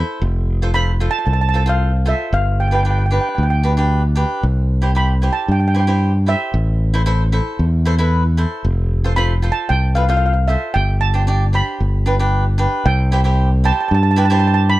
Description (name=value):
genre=calypso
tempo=114 BPM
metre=4/4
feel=straight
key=C major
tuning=A4 = 438 Hz
part: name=cavaquinho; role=accompaniment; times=0.0-14.8 s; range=D4 to D5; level=-22 LUFS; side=right 1 dB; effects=none
part: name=modern bright fingered electric bass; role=bass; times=0.2-14.8 s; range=F1 to G2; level=-15 LUFS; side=equal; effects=none
part: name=steel pan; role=melody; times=0.7-14.8 s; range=E5 to B5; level=-21 LUFS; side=right 2 dB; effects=none
room=small room ambience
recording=dry, close 1970s-style studio recording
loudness=-14 LUFS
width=side -17 dB against mid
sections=0.0-12.9 A section; 12.9-14.8 B section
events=none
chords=0.2 F; 2.3 G; 4.4 C; 6.5 Am; 8.6 F; 10.7 Gsus4; 11.8 G; 12.9 C